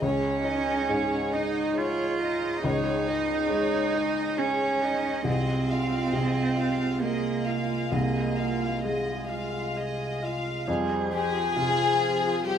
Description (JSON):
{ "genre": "neoclassical piano and strings", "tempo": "68 BPM", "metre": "3/4", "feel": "rubato", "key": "unclear", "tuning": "A4 = 436 Hz", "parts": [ { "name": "warm chamber violin section", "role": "melody", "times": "0.0-12.6 s", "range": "G4 to F5", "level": "-31 LUFS", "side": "left 4 dB", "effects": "none" }, { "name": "dark cello", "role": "second line", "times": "0.0-12.6 s", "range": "Ab3 to Ab4", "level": "-28 LUFS", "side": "right 3 dB", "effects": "none" }, { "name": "felt-muted upright piano", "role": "accompaniment", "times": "0.0-12.6 s", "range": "C2 to Ab3", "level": "-30 LUFS", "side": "left 1 dB", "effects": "none" }, { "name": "warm viola", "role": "accompaniment", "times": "0.0-12.6 s", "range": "F3 to Ab4", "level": "-36 LUFS", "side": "right 2 dB", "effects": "none" }, { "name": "pedal harmonium", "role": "sustained chords", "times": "0.0-12.6 s", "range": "F3 to Eb5", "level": "-36 LUFS", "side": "left 1 dB", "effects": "none" } ], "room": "moderate large studio reverb, RT60 0.9 s", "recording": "band playing live in one room", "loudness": "-24 LUFS", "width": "side -8 dB against mid", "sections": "0.0-10.7 A section; 10.7-12.6 B section", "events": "none", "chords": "0.0 Dbsus2; 5.3 Ab6/C; 10.7 Fmadd9" }